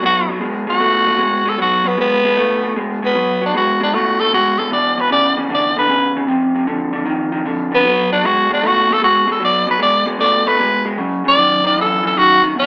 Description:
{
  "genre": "blues",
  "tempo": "153 BPM",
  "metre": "4/4",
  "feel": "swing 68% on 8ths",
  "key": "unclear",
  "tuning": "A4 = 440 Hz",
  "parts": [
    { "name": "growling tenor saxophone", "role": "melody", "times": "0.0-12.7 s", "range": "B3 to D5", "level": "-16 LUFS", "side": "equal", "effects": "none" },
    { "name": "electric guitar through a small old amp", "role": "riff", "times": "0.0-12.7 s", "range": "E2 to A3", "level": "-21 LUFS", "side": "equal", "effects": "none" }
  ],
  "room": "moderate large studio reverb, RT60 1.1 s",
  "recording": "band playing live in one room, AM radio sound",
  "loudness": "-16 LUFS",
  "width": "mono",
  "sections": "0.0-12.7 A section",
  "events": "tenor saxophone solo 0.0-12.7",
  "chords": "0.0 B5; 4.7 E5; 6.3 F5; 7.9 B5; 11.0 F#5",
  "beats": "| 0.03 0.42 0.81 1.20 | 1.59 1.98 2.38 2.77 | 3.16 3.55 3.94 4.33 | 4.72 5.11 5.50 5.90 | 6.29 6.68 7.07 7.46 | 7.85 8.24 8.63 9.03 | 9.42 9.81 10.20 10.59 | 10.98 11.37 11.76 12.15 | 12.54"
}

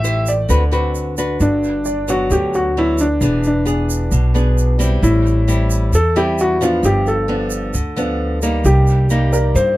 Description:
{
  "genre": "bossa nova",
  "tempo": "132 BPM",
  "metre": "4/4",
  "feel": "straight",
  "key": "G major",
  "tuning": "A4 = 440 Hz",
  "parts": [
    { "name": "felt-muted upright piano", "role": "melody", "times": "0.0-9.8 s", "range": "D4 to E5", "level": "-18 LUFS", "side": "equal", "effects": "none" },
    { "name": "nylon-string guitar", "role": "accompaniment", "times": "0.0-9.8 s", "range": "G2 to C5", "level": "-20 LUFS", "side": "equal", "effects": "none" },
    { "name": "warm grand piano", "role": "accompaniment", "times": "0.0-3.3, 6.2-9.8 s", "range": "D5 to G5", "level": "-30 LUFS", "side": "right 1 dB", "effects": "none" },
    { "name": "upright bass", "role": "bass", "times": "0.0-9.8 s", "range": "E1 to G2", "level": "-17 LUFS", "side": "equal", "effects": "none" },
    { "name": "egg shaker", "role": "percussion", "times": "0.0-9.8 s", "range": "none", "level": "-30 LUFS", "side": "right 8 dB", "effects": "none" }
  ],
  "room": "little or no reverb",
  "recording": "close, detailed microphones",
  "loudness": "-14 LUFS",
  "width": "side -17 dB against mid",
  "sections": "0.0-1.4 A section; 1.4-9.8 A section",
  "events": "none",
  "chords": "0.5 D6; 1.4 Gmaj7; 3.2 E7; 5.0 Am7; 6.8 G7; 8.6 Cm7",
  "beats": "0.04 0.49 0.94 | 1.40 1.85 2.30 2.76 | 3.21 3.66 4.12 4.57 | 5.02 5.48 5.93 6.38 | 6.83 7.29 7.74 8.19 | 8.65 9.10 9.55"
}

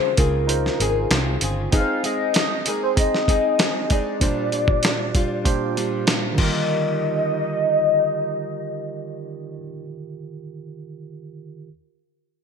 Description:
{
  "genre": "indie pop, bedroom pop",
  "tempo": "97 BPM",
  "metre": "4/4",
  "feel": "straight",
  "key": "Eb major",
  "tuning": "A4 = 441 Hz",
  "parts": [
    { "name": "soft octave-layered synth lead", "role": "melody", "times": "0.0-9.6 s", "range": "Bb4 to F5", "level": "-23 LUFS", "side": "left 2 dB", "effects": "phaser, lush chorus" },
    { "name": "barky tine electric piano", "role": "accompaniment", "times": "0.0-11.7 s", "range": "Bb2 to Eb5", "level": "-28 LUFS", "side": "right 6 dB", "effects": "overdrive" },
    { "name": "flamenco guitar", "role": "accompaniment", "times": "0.0-9.9 s", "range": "Bb2 to Ab4", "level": "-29 LUFS", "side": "left 5 dB", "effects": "lush chorus, vibrato effect" },
    { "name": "vintage muted fingered electric bass", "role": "bass", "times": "0.2-1.7 s", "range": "G1 to Db2", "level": "-23 LUFS", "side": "right 1 dB", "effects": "none" },
    { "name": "dusty soul sampler-style drum kit", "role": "drums", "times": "0.2-6.5 s", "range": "crash cymbal, hi-hat, kick drum, snare drum", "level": "-21 LUFS", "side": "equal", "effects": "overdrive, gated reverb" }
  ],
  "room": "moderate plate reverb, RT60 1.9 s",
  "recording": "bright 1980s-style digital production",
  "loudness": "-19 LUFS",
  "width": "side -6 dB against mid",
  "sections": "0.0-6.7 A section; 6.7-9.2 B section",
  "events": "none",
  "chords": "0.0 Dbmaj7; 1.7 Ab; 4.2 Bb6; 6.4 Ebmaj7",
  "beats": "0.49 1.11 | 1.73 2.35 2.97 3.59 | 4.21 4.83 5.45 6.07 | 6.69 7.31 7.93 8.55"
}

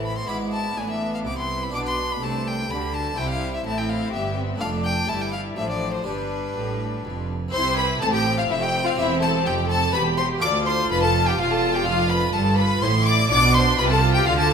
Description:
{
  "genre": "classical, baroque-style concerto movement with solo episodes",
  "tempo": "125 BPM",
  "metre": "3/4",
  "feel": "straight",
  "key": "C major",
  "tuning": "A4 = 440 Hz",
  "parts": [
    { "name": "clear violin", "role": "melody", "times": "0.0-14.5 s", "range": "B4 to D6", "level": "-26 LUFS", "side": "left 2 dB", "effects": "none" },
    { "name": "rich chamber violin section", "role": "melody", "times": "0.0-14.5 s", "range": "B4 to D6", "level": "-28 LUFS", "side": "left 4 dB", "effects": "none" },
    { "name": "rich chamber violin section", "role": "second line", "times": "0.0-14.5 s", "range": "C4 to D5", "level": "-27 LUFS", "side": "left 3 dB", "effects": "none" },
    { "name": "harpsichord", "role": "accompaniment", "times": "0.0-14.5 s", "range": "D2 to D5", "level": "-34 LUFS", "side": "equal", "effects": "none" },
    { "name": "rich chamber viola section", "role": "accompaniment", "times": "0.0-14.5 s", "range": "E3 to G4", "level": "-28 LUFS", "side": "right 2 dB", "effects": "none" },
    { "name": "rich studio double bass section", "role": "bass", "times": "0.0-14.5 s", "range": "E1 to D2", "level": "-28 LUFS", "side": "right 3 dB", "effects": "none" },
    { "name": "rich symphonic cello section", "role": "bass", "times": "0.0-14.5 s", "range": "D2 to D3", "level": "-27 LUFS", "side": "right 2 dB", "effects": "none" }
  ],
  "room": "moderate recital hall reverb, RT60 1.3 s",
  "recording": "minimal, uncompressed stereo recording",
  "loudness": "-20 LUFS",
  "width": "side -6 dB against mid",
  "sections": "0.0-7.5 A section; 7.5-14.5 B section",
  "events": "none",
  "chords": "0.3 E7/G#; 1.7 G/B; 3.2 C; 4.6 Dm/F; 7.5 C; 9.0 C/E; 10.4 Dm; 11.9 Dm/F; 13.3 F69",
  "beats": "| 0.29 0.77 1.25 | 1.73 2.21 2.69 | 3.17 3.64 4.12 | 4.60 5.08 5.57 | 6.06 6.55 7.04 | 7.53 8.01 8.49 | 8.98 9.46 9.94 | 10.42 10.90 11.38 | 11.86 12.34 12.82 | 13.30 13.78 14.26"
}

